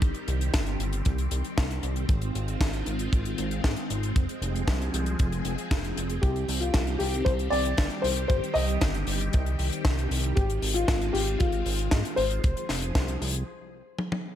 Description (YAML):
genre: italo disco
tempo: 116 BPM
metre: 4/4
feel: straight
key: C minor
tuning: A4 = 440 Hz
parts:
  - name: phased string machine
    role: sustained chords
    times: 0.0-13.5 s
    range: Eb3 to Ab4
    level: -33 LUFS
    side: equal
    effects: ensemble chorus, phaser
  - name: chorused synth bass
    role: bass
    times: 0.0-13.4 s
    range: F1 to Ab2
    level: -30 LUFS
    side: equal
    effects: tube saturation
  - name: kick drum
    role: drums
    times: 0.0-13.1 s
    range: none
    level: -24 LUFS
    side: equal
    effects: studio reverb
  - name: tight funk drum kit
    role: drums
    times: 0.0-14.2 s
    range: hi-hat, snare drum, toms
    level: -32 LUFS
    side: left 2 dB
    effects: studio reverb, gated reverb
  - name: dark grand piano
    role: melody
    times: 6.2-14.2 s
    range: F4 to Eb5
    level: -30 LUFS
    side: left 3 dB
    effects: ping-pong delay
room: studio ambience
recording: none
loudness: -24 LUFS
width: side -11 dB against mid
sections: 0.0-14.4 A section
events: break 13.5-14.4; drum fill 14.0-14.4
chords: 0.0 Cm; 2.1 Ab6; 4.2 Fm; 6.2 Cm; 10.4 Ab6; 12.4 Fm